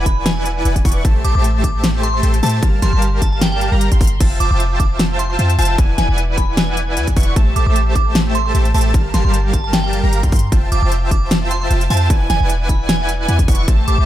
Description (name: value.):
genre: future bass.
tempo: 152 BPM.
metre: 4/4.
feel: swing 54% on 16ths, half-time.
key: unclear.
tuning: A4 = 440 Hz.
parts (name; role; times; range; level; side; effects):
airy dreamy lead; arpeggios; 0.0-14.1 s; G#5 to Db6; -26 LUFS; equal; chorus, sidechain pumping, ping-pong delay.
dense compressed supersaw; riff; 0.0-14.1 s; G3 to Db6; -22 LUFS; equal; cassette tape, sidechain pumping.
warm 808-style bass; bass; 0.0-14.1 s; E1 to A2; -17 LUFS; equal; sidechain pumping.
glassy synth bell; melody; 0.1-14.0 s; G5 to D6; -24 LUFS; right 2 dB; chorus, phaser, sidechain pumping, ping-pong delay.
electronic kick drum; drums; 0.1-13.8 s; none; -15 LUFS; equal; none.
pop drum kit; drums; 0.1-14.0 s; crash cymbal, hi-hat, snare drum; -21 LUFS; left 1 dB; none.
room: little or no reverb.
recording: none.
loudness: -13 LUFS.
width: side -13 dB against mid.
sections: 0.0-14.1 A section.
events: none.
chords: 0.0 E7; 1.0 Am7; 2.6 Gm9; 4.2 Fmaj7; 5.8 E7; 7.4 Am7; 8.9 Gm9; 10.5 Fmaj7; 12.1 E7.